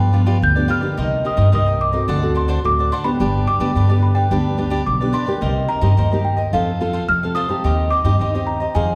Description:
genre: samba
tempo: 108 BPM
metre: 4/4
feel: straight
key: C minor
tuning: A4 = 440 Hz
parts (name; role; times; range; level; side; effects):
- worn celesta; melody; 0.0-8.9 s; F5 to G6; -25 LUFS; equal; none
- cavaquinho; accompaniment; 0.0-8.9 s; D4 to F#5; -28 LUFS; equal; none
- nylon-string guitar; accompaniment; 0.0-8.9 s; G2 to A4; -25 LUFS; equal; none
- upright bass; bass; 0.0-8.9 s; G1 to G2; -21 LUFS; equal; none
room: wet recital hall reverb, RT60 1.8 s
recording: recorded in a church or concert hall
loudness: -18 LUFS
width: mono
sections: 0.0-8.9 A section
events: none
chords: 0.0 G7; 1.0 Cm7; 2.1 D7; 3.2 G; 5.4 Cm7; 6.5 F; 7.6 Cm/Eb

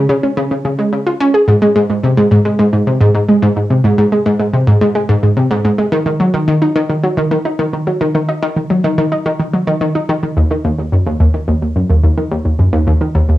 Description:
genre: ambient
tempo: 108 BPM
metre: 4/4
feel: straight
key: Eb minor from 10.4 s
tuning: A4 = 440 Hz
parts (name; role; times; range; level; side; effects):
- analog pluck; solo; 0.0-13.4 s; Eb2 to Ab4; -11 LUFS; equal; chorus, cassette tape, ping-pong delay
room: wet small room reverb, RT60 0.5 s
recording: home recording on cassette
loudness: -11 LUFS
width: side -15 dB against mid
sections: 0.0-10.4 A section; 10.4-13.4 B section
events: none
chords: none

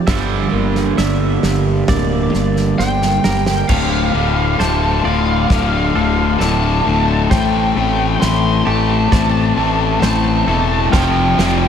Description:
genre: post-rock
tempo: 66 BPM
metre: 4/4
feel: straight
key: D minor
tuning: A4 = 440 Hz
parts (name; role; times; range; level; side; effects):
- clean electric guitar; arpeggios; 0.0-11.7 s; G4 to F5; -28 LUFS; right 4 dB; analog delay
- electric guitar through a small old amp; arpeggios; 0.0-11.7 s; D2 to A4; -24 LUFS; left 3 dB; analog delay
- crunchy overdriven guitar; riff; 0.0-3.7, 10.9-11.7 s; F2 to G3; -19 LUFS; right 8 dB; wide subtle chorus
- fuzz fingered electric bass; bass; 0.1-11.7 s; D1 to A1; -19 LUFS; equal; overdrive
- loose indie drum kit; drums; 0.1-11.6 s; crash cymbal, kick drum, snare drum; -20 LUFS; right 1 dB; none
- biting lead guitar; melody; 2.8-11.7 s; F5 to C6; -19 LUFS; right 2 dB; overdrive, analog delay
- crunchy overdriven guitar; riff; 3.7-11.7 s; D2 to A3; -18 LUFS; left 9 dB; none
room: moderate huge ambient reverb, RT60 5.2 s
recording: dreamy mix soaked in reverb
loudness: -13 LUFS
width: side -8 dB against mid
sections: 0.0-3.7 A section; 3.7-11.7 B section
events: drum fill 2.8-3.7, 3.7-11.7; build-up 3.7-11.7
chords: 0.1 Gm; 3.7 Dm; 7.3 Am7; 10.9 Fsus2

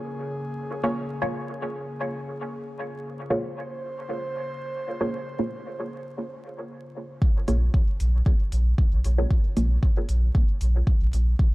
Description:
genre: dub techno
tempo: 115 BPM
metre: 4/4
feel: swing 53% on 16ths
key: Bb minor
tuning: A4 = 443 Hz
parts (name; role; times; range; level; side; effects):
- airy breathy pad; sustained chords; 0.0-7.2 s; Db3 to C5; -34 LUFS; equal; chorus, vintage 12-bit sampler grit, sidechain pumping
- filtered dub chord stab; stabs; 0.8-9.8 s; Bb3 to Db5; -30 LUFS; equal; phaser, dub echo
- electronic kick drum; drums; 7.2-11.5 s; none; -20 LUFS; equal; overdrive
- soft dub sub bass; bass; 7.5-11.3 s; Bb1; -21 LUFS; equal; tube saturation, sidechain pumping
- electronic hi-hat; drums; 7.5-11.2 s; none; -43 LUFS; equal; overdrive
room: digital ambience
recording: dry, gritty hardware recording, vinyl crackle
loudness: -23 LUFS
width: side -21 dB against mid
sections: 0.0-7.2 A section; 7.2-11.5 B section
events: filter sweep on synth stab 0.0-7.2, 7.2-11.5; filter sweep on analog synth pad 0.0-7.2; break 6.2-7.2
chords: 0.0 Bbm7

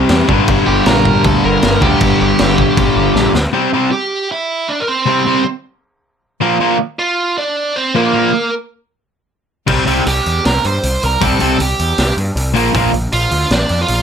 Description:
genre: punk rock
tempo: 156 BPM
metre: 4/4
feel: straight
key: unclear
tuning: A4 = 439 Hz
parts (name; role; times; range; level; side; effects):
- overdriven semi-hollow guitar; riff; 0.0-12.9 s; G2 to C4; -17 LUFS; right 14 dB; none
- sludgy distorted guitar; riff; 0.0-12.9 s; G2 to C4; -15 LUFS; left 11 dB; overdrive
- fuzz picked electric bass; bass; 0.0-3.5, 9.7-14.0 s; G1 to G2; -18 LUFS; equal; overdrive
- raw garage drum kit; drums; 0.1-3.4, 9.7-14.0 s; crash cymbal, hi-hat, kick drum, snare drum; -18 LUFS; equal; none
- bluesy overdriven lead guitar; melody; 0.7-14.0 s; Bb3 to C6; -16 LUFS; right 3 dB; distortion
room: light reverb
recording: none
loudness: -12 LUFS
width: side -7 dB against mid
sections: 0.0-3.5 A section; 3.5-14.0 B section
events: drum fill 3.2-3.5; half time 3.5-14.0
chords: 0.3 Gm; 3.5 C; 6.4 Bb; 9.7 C5; 12.6 Bb

